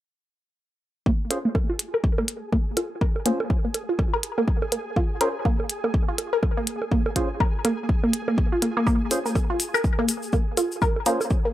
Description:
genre	minimal techno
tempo	123 BPM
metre	4/4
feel	swing 60% on 16ths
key	Bb minor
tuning	A4 = 440 Hz
part	resonant blip pluck	riff	1.1-11.5 s	Bb3 to Bb4	-25 LUFS	equal	phaser, vintage 12-bit sampler grit, sidechain pumping, analog delay
part	electronic kick drum	drums	1.1-11.4 s	none	-23 LUFS	equal	overdrive
part	flickering grainy texture	texture	1.5-11.5 s	Ab4	-38 LUFS	right 1 dB	built-in reverb, sidechain pumping
part	percussive organ stab	stabs	1.3-11.2 s	Db4 to C5	-29 LUFS	equal	analog chorus, analog delay
part	electronic hi-hat	drums	1.3-11.2 s	none	-27 LUFS	equal	overdrive
part	bongos	percussion	1.3-11.3 s	none	-31 LUFS	right 4 dB	analog delay
part	tube shaker	percussion	8.9-11.4 s	none	-32 LUFS	left 4 dB	none
room	light reverb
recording	dry, gritty hardware recording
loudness	-22 LUFS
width	side -14 dB against mid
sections	1.1-11.5 A section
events	filter sweep on synth pluck 1.1-11.5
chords	1.1 Bbm7

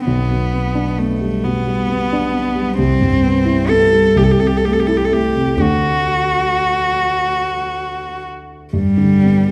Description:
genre	classical, romantic duo for cello and grand piano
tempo	37-44 BPM (dotted quarters)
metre	6/8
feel	rubato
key	G major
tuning	A4 = 441 Hz
part	warm cello	melody	0.0-9.5 s	G3 to A4	-19 LUFS	equal	none
part	dark concert grand piano	accompaniment	0.0-9.5 s	B1 to E4	-19 LUFS	equal	none
room	wet recital hall reverb, RT60 1.7 s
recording	dark, warm production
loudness	-16 LUFS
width	mono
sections	0.0-9.5 A section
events	none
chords	0.0 G/B; 2.8 Cmaj7; 4.2 Am/C; 5.6 D; 8.7 G

